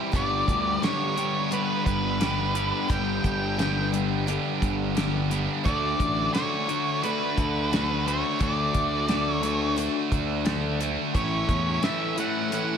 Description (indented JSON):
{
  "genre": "classic rock",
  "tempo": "87 BPM",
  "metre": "4/4",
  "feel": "straight",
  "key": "unclear",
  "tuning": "A4 = 440 Hz",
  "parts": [
    { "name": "picked steel-string acoustic guitar", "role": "accompaniment", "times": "0.0-12.8 s", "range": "G2 to G4", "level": "-37 LUFS", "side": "right 4 dB", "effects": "none" },
    { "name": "distorted electric guitar", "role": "riff", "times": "0.0-12.8 s", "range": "G2 to G4", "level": "-30 LUFS", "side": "right 10 dB", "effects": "overdrive, slapback echo" },
    { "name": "overdriven semi-hollow guitar", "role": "riff", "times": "0.0-12.8 s", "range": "G2 to D4", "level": "-30 LUFS", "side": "left 11 dB", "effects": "phaser, slapback echo" },
    { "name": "fuzz picked electric bass", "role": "bass", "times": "0.1-11.8 s", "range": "G1 to E2", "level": "-30 LUFS", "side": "equal", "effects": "overdrive" },
    { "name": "damped 70s drum kit", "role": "drums", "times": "0.1-12.7 s", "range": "hi-hat, kick drum, snare drum", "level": "-30 LUFS", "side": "equal", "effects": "none" },
    { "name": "octave-fuzz lead guitar", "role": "melody", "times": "0.2-12.8 s", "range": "B4 to G5", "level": "-28 LUFS", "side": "equal", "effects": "distortion" }
  ],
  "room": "moderate concert hall reverb, RT60 2.2 s",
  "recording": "big arena sound",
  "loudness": "-23 LUFS",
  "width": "side -7 dB against mid",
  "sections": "0.0-12.8 A section",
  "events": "none",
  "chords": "0.1 G; 5.7 D; 11.1 A"
}